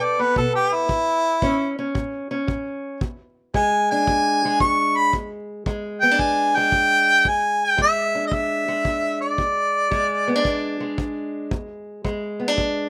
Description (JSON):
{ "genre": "acoustic country blues, solo or duo", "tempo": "113 BPM", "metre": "4/4", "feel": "swing 68% on 8ths", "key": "E mixolydian", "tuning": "A4 = 439 Hz", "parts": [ { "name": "mellow harmonica", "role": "melody", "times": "0.0-10.8 s", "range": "E4 to C#6", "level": "-21 LUFS", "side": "equal", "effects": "none" }, { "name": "fingerpicked steel-string acoustic guitar", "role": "accompaniment", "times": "0.0-12.9 s", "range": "E2 to A4", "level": "-28 LUFS", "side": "equal", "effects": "none" }, { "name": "kick drum", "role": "drums", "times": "0.4-12.7 s", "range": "none", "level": "-30 LUFS", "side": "equal", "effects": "none" } ], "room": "little or no reverb", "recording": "recorded outdoors, with no room sound", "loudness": "-21 LUFS", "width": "mono", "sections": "0.0-5.1 A section; 5.1-12.9 B section", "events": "harmonica solo 0.0-5.1", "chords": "0.0 B7(no3); 0.9 A; 3.0 E7" }